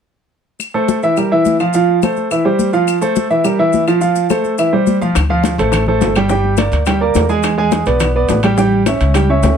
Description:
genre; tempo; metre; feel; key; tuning
latin, salsa; 211 BPM; 4/4; straight; D minor; A4 = 440 Hz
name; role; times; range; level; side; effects
claves; percussion; 0.6-9.3 s; none; -27 LUFS; left 8 dB; none
congas; percussion; 0.6-9.6 s; none; -21 LUFS; left 7 dB; none
maracas; percussion; 0.6-9.6 s; none; -32 LUFS; left 7 dB; none
clear baby grand piano; accompaniment; 0.7-9.5 s; E3 to G#5; -13 LUFS; right 2 dB; none
upright bass; bass; 5.2-9.6 s; G1 to E2; -16 LUFS; left 1 dB; none
bongos; percussion; 5.2-9.6 s; none; -23 LUFS; left 8 dB; none
timbales; percussion; 5.2-9.6 s; none; -23 LUFS; right 3 dB; none
room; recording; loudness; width
light reverb; none; -12 LUFS; side -7 dB against mid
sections
0.6-5.2 A section; 5.2-9.6 B section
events
none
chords
0.6 Am; 1.2 Edim; 1.7 F; 2.3 C; 2.9 Fmaj7; 3.5 Edim; 4.0 F; 4.6 C; 5.2 Dm7; 6.3 Gm; 7.4 E7; 8.6 A7

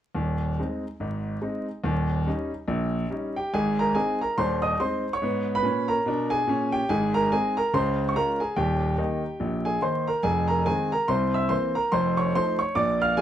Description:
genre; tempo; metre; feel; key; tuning
jazz, stride piano; 143 BPM; 4/4; swing 61% on 8ths; Ab major; A4 = 440 Hz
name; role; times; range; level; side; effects
clear concert grand piano; solo; 0.1-13.2 s; Eb1 to F6; -23 LUFS; equal; none
room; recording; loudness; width
light reverb; close, detailed microphones, vinyl crackle; -23 LUFS; side -10 dB against mid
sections
0.2-3.5 A section; 3.5-13.2 B section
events
none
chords
0.2 Ab/Eb; 1.8 Eb7; 3.5 Ab; 5.2 Abdim; 6.9 Ab; 7.7 Db; 8.6 Eb; 10.2 Fm7; 11.1 C7; 11.9 F7

